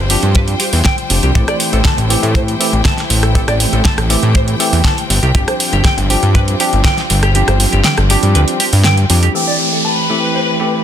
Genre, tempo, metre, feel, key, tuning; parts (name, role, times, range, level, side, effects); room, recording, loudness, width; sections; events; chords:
nu-disco, nu disco; 120 BPM; 4/4; straight; A minor; A4 = 440 Hz
tine electric piano; accompaniment; 0.0-10.8 s; E3 to G4; -19 LUFS; equal; medium stereo tremolo, sidechain pumping, tape echo
clear symphonic string section; sustained chords; 0.0-10.8 s; G3 to G5; -22 LUFS; left 2 dB; sidechain pumping, low-pass filter
fat analog bass; bass; 0.0-9.3 s; F1 to A2; -13 LUFS; equal
clean electric guitar; riff; 0.1-10.6 s; G4 to A5; -21 LUFS; equal; wide subtle chorus, vintage 12-bit sampler grit, low-pass filter, tape echo
pop drum kit; drums; 0.1-10.7 s; hi-hat, rim click, snare drum; -17 LUFS; right 1 dB; low-pass filter on hats, low-pass filter on snare
kick drum; drums; 0.4-7.0 s; -14 LUFS; equal
downlifter; sound effects; 9.3-10.8 s; -17 LUFS; equal
rich studio violin section; melody; 9.8-10.8 s; B4; -18 LUFS; left 3 dB; digital delay
light reverb; dense, heavily limited modern master; -11 LUFS; side -10 dB against mid
0.0-9.3 A section; 9.3-10.8 B section
kick drops out 7.3-9.3; filter sweep on clean electric guitar 9.3-10.8; filter sweep on string section 9.3-10.8
0.0 G7sus4; 1.4 Am7; 5.1 G7sus4; 9.3 Am7